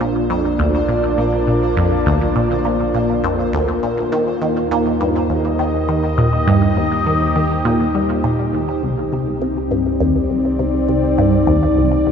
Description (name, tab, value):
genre	ambient, sequencer-driven space music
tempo	102 BPM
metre	4/4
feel	straight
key	C minor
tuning	A4 = 444 Hz
part	sweeping resonant pad	sustained chords	0.0-12.1 s	Bb3 to Eb5	-18 LUFS	left 1 dB	wide subtle chorus
part	resonant blip pluck	riff	0.0-12.1 s	C2 to G3	-18 LUFS	right 1 dB	phaser, tape echo
part	warm sub bass	bass	0.0-12.1 s	Bb1 to Eb2	-25 LUFS	equal	none
part	pulsing gated texture	texture	0.0-8.8 s	C5	-32 LUFS	right 4 dB	chorus, built-in reverb
room	wet cathedral reverb, RT60 5.8 s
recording	in a vast, echoing space, nothing above 8.0 kHz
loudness	-15 LUFS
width	side -7 dB against mid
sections	0.0-8.8 A section; 8.8-12.1 A section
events	none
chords	0.0 Bb; 4.1 Eb; 8.8 Cmadd9